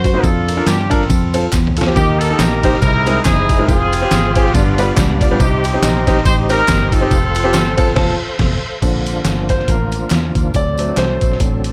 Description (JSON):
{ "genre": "uptempo gospel", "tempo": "140 BPM", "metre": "4/4", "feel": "swing 56% on 8ths", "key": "Bb major", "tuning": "A4 = 437 Hz", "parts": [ { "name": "clear horn section", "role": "melody", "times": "0.0-8.4 s", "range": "Bb3 to C5", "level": "-21 LUFS", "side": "equal", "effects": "none" }, { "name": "bright grand piano", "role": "accompaniment", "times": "0.0-11.4 s", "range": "G2 to A5", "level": "-22 LUFS", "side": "equal", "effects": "none" }, { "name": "fingered electric bass", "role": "bass", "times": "0.0-11.7 s", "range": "F1 to G2", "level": "-21 LUFS", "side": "equal", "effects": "none" }, { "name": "trip hop sampler-style drum kit", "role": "drums", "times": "0.0-11.7 s", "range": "crash cymbal, hi-hat, kick drum, ride cymbal, snare drum, toms", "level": "-19 LUFS", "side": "equal", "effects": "none" }, { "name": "tambourine and handclaps", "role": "percussion", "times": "0.1-11.7 s", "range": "none", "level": "-32 LUFS", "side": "equal", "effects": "none" }, { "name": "bright tonewheel organ", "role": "sustained chords", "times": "2.0-11.7 s", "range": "F3 to C6", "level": "-27 LUFS", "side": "equal", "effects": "fast rotary speaker, chorus vibrato" } ], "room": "small room reverb", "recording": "none", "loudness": "-15 LUFS", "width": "mono", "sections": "0.0-8.8 A section; 8.8-11.7 B section", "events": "drum fill 1.5-2.0; band accent 8.0-8.8; grand piano solo 8.8-11.7", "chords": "0.2 Bb/F; 1.1 F; 2.0 Eb; 2.8 C7alt; 3.7 Fm; 4.5 G7; 5.4 Cm; 7.1 F; 8.8 Bbmaj7; 10.5 D7" }